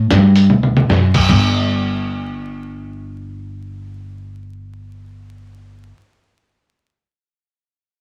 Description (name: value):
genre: country, western swing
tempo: 152 BPM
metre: 4/4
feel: swing 64% on 8ths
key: unclear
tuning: A4 = 440 Hz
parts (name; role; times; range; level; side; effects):
- upright bass; bass; 0.0-5.9 s; G1 to G2; -19 LUFS; equal; none
- lo-fi sampler-style drum kit; drums; 0.1-1.4 s; crash cymbal, hi-hat, kick drum, snare drum, toms; -19 LUFS; equal; none
room: moderate studio reverb, RT60 0.7 s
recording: vinyl crackle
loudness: -14 LUFS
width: mono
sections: 0.0-1.3 A section; 1.3-4.4 B section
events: drum fill 0.5-0.9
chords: none